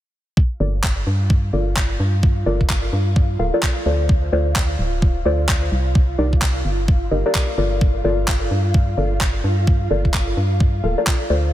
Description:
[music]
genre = UK garage, two-step garage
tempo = 129 BPM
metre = 4/4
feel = swing 62% on 16ths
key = G minor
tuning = A4 = 436 Hz
[part]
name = ethereal airy pad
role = sustained chords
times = 0.8-11.5 s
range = F4 to F5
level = -30 LUFS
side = equal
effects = ensemble chorus, built-in reverb, sidechain pumping
[part]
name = electronic kick drum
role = drums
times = 0.4-11.2 s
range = none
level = -17 LUFS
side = equal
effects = none
[part]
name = deep mellow chord stab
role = stabs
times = 0.6-11.5 s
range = Eb4 to F5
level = -24 LUFS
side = left 1 dB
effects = chorus, dub echo
[part]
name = organ-like FM bass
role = bass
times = 0.6-11.5 s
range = D1 to G2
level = -20 LUFS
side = equal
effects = none
[part]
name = electronic handclaps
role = drums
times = 0.8-11.2 s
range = none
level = -26 LUFS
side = equal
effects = none
[sound]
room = light reverb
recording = dense, heavily limited modern master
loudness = -16 LUFS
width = side -13 dB against mid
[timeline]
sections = 0.4-11.5 A section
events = filter sweep on FM bass 0.4-11.5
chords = 0.4 Gm9; 3.9 Dm7; 6.0 Cm9; 7.8 Gm9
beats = | 0.37 0.84 1.30 1.77 | 2.23 2.70 3.16 3.63 | 4.09 4.56 5.02 5.49 | 5.95 6.42 6.88 7.35 | 7.81 8.28 8.74 9.21 | 9.67 10.14 10.60 11.07

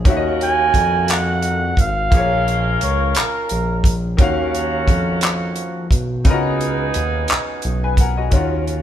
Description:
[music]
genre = slow six-eight R&B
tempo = 58 BPM (dotted quarters)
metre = 6/8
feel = straight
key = Eb minor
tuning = A4 = 439 Hz
[part]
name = bright grand piano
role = accompaniment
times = 0.0-8.8 s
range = Bb2 to Ab5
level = -24 LUFS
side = left 3 dB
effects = none
[part]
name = clear horn section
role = stabs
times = 0.0-7.9 s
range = Bb3 to Bb4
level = -25 LUFS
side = right 1 dB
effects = none
[part]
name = smooth synth bass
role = bass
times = 0.0-8.8 s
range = Ab1 to F2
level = -22 LUFS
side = equal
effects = none
[part]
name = damped 70s drum kit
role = drums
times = 0.1-8.8 s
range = handclaps, hi-hat, kick drum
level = -17 LUFS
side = equal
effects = none
[part]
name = warm flugelhorn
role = melody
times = 0.4-3.9 s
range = Bb4 to Ab5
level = -19 LUFS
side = right 3 dB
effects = none
[sound]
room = light reverb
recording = band playing live in one room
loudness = -15 LUFS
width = side -10 dB against mid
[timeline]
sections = 0.0-8.3 A section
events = none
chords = 0.1 Ebm9; 2.1 Bbm7; 4.2 Ebm9; 6.3 Db13sus4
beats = | 0.05 1.08 | 2.12 3.15 | 4.19 5.22 | 6.26 7.29 | 8.33

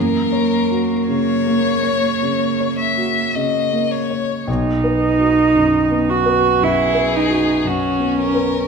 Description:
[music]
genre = classical, slow romantic movement for piano trio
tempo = 53-58 BPM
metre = 4/4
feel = rubato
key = B major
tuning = A4 = 439 Hz
[part]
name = rich violin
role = melody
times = 0.0-8.7 s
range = F#4 to E5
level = -21 LUFS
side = left 8 dB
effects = none
[part]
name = warm cello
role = second line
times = 0.0-8.7 s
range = A#3 to F#4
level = -17 LUFS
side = right 4 dB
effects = none
[part]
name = dark concert grand piano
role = accompaniment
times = 0.0-8.7 s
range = B1 to C#5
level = -21 LUFS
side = left 2 dB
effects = none
[sound]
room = wet recital hall reverb, RT60 1.7 s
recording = recorded in a church or concert hall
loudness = -15 LUFS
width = side -5 dB against mid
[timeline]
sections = 0.0-8.7 A section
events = none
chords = 0.0 F#; 4.5 B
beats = 1.09 2.23 3.36 | 4.48 5.55 6.62 7.65

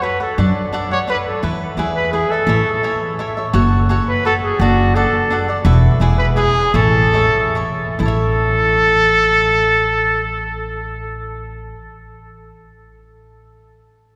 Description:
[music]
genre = mexican folk, mariachi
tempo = 128-172 BPM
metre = 3/4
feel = straight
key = A major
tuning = A4 = 440 Hz
[part]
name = warm trumpet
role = melody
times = 0.0-11.5 s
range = F#4 to C#5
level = -19 LUFS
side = equal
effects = none
[part]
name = cavaquinho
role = accompaniment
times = 0.0-11.8 s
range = D4 to F#5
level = -25 LUFS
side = equal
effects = none
[part]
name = upright bass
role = bass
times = 0.4-11.7 s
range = E1 to F#2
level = -20 LUFS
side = equal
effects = none
[sound]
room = wet cathedral reverb, RT60 6.0 s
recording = recorded in a church or concert hall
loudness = -16 LUFS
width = mono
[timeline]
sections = 0.0-3.5 A section; 3.5-8.0 B section; 8.0-10.8 C section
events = break 3.2-3.5; slowing down 5.6-8.0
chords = 0.4 D/F#; 1.4 Esus4; 1.8 E; 2.5 A; 3.5 F#m; 4.6 D/F#; 5.6 Esus4; 6.0 E; 6.7 A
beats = 0.02 | 0.37 0.72 1.08 | 1.43 1.77 2.12 | 2.47 2.82 3.18 | 3.53 3.89 4.24 | 4.60 4.95 5.30 | 5.65 6.00 6.36 | 6.73 7.12 7.54 | 8.00 8.46 8.92 | 9.38 9.84 10.30

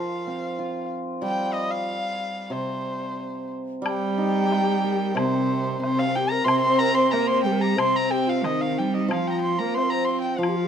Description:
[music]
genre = chinese traditional, Chinese chamber ensemble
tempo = 92 BPM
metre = 2/4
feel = straight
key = C yu mode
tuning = A4 = 440 Hz
[part]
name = dark erhu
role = melody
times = 0.0-10.7 s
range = C5 to C6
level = -26 LUFS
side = equal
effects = none
[part]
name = hammered dulcimer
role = accompaniment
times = 0.0-10.7 s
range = C3 to Bb4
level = -28 LUFS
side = right 1 dB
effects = none
[part]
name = bright reedy low xiao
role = second line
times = 3.8-10.7 s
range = C4 to C5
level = -27 LUFS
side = left 9 dB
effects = none
[part]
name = rich cello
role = second line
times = 3.8-10.7 s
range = C3 to C4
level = -26 LUFS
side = right 6 dB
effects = none
[part]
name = woodblock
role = percussion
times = 3.9-10.6 s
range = none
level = -32 LUFS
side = left 3 dB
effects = none
[sound]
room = moderate recital hall reverb, RT60 1.6 s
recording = close, detailed microphones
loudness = -21 LUFS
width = side -8 dB against mid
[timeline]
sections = 0.0-3.9 A section; 3.9-10.7 B section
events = none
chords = none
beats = 0.58 | 1.23 1.88 | 2.53 3.19 | 3.85 4.52 | 5.17 5.83 | 6.48 7.13 | 7.79 8.45 | 9.11 9.77 | 10.42

